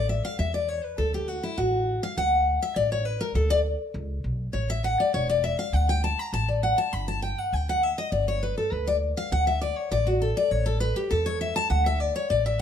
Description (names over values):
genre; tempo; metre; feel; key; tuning
bluegrass; 201 BPM; 4/4; straight; D major; A4 = 440 Hz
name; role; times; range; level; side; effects
picked steel-string acoustic guitar; accompaniment; 0.0-12.6 s; E4 to B5; -25 LUFS; left 2 dB; none
upright bass; bass; 0.0-12.6 s; E1 to E2; -27 LUFS; equal; none
room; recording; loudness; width
moderate studio reverb, RT60 0.8 s; lossy compression artefacts; -23 LUFS; side -8 dB against mid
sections
0.0-6.9 A section; 6.9-12.6 A section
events
steel-string acoustic guitar solo 0.0-12.6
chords
0.0 A5; 1.0 D; 4.5 A5; 5.7 D5; 6.9 G5; 9.3 D5; 10.5 A5; 11.7 D5